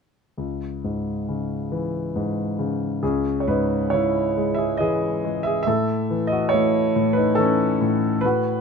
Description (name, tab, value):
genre	classical, lyrical solo piano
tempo	69 BPM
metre	3/4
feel	rubato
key	C# minor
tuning	A4 = 441 Hz
part	warm concert grand piano	solo	0.4-8.6 s	C#2 to E5	-20 LUFS	equal	none
room	light reverb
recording	close, detailed microphones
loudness	-20 LUFS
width	side -5 dB against mid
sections	0.4-3.0 A section; 3.0-8.6 B section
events	none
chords	0.4 C#m; 3.0 C#madd9; 5.7 A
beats	| 0.37 1.27 2.14 | 3.02 3.92 4.80 | 5.67 6.53 7.38 | 8.23